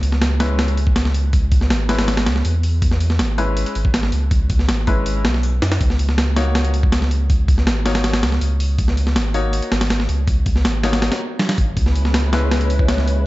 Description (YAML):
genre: drum and bass, jungle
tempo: 161 BPM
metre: 4/4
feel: straight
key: C# dorian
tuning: A4 = 440 Hz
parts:
  - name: saturated sub bass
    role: bass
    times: 0.0-13.3 s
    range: G#1 to F#2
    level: -18 LUFS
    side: equal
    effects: none
  - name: breakbeat sampler-style drum kit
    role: drums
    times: 0.0-13.2 s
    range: hi-hat, kick drum, snare drum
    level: -19 LUFS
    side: equal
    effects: none
  - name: clear grand piano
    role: stabs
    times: 0.4-12.7 s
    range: G#3 to C#5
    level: -26 LUFS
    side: left 3 dB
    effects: dub echo
  - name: soft string machine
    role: sustained chords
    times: 11.8-13.2 s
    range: G#3 to B4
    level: -25 LUFS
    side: left 1 dB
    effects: phaser, ensemble chorus
room: digital ambience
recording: dark, warm production, vinyl crackle, nothing above 7.9 kHz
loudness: -15 LUFS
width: side -18 dB against mid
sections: 0.0-13.3 A section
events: none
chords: 0.0 C#m7; 5.8 D#m7; 11.8 C#m7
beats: 0.21 0.59 0.96 | 1.33 1.71 2.08 2.45 | 2.82 3.20 3.57 3.94 | 4.31 4.69 5.06 5.43 | 5.80 6.18 6.55 6.92 | 7.29 7.67 8.04 8.41 | 8.79 9.16 9.53 9.90 | 10.28 10.65 11.02 11.39 | 11.77 12.14 12.51 12.88 | 13.26